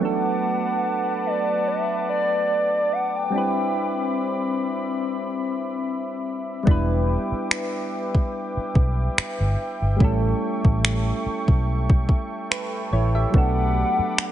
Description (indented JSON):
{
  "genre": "contemporary R&B",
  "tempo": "72 BPM",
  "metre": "4/4",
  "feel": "swing 54% on 16ths",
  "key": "E minor",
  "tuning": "A4 = 445 Hz",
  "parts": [
    { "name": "hollow clarinet-like synth lead", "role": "melody", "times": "0.0-4.4, 13.3-14.3 s", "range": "D5 to G5", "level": "-24 LUFS", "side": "equal", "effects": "chorus, ping-pong delay" },
    { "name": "soft electric-piano-like synth keys", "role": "accompaniment", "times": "0.0-14.3 s", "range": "F#3 to E5", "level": "-27 LUFS", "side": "right 2 dB", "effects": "chorus" },
    { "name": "warm analog pad", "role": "sustained chords", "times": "0.0-14.3 s", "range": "C4 to D6", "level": "-29 LUFS", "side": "left 3 dB", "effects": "chorus, sidechain pumping" },
    { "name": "vintage muted fingered electric bass", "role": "bass", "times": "6.7-14.0 s", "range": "E1 to B1", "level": "-22 LUFS", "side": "equal", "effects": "none" },
    { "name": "smooth R&B drum kit", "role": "drums", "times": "6.7-14.3 s", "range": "finger snaps, kick drum", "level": "-20 LUFS", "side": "equal", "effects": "none" }
  ],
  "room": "light reverb",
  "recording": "nothing above 10.3 kHz",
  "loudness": "-20 LUFS",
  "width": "side -11 dB against mid",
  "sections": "0.0-14.3 A section",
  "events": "none",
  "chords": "0.0 Bm7; 3.3 Cmaj9; 6.7 Em7; 10.0 A7; 13.3 Bm7",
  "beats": "| 0.00 0.84 1.67 2.50 | 3.34 4.17 5.00 5.84 | 6.67 7.50 8.34 9.17 | 10.00 10.84 11.67 12.50 | 13.34 14.17"
}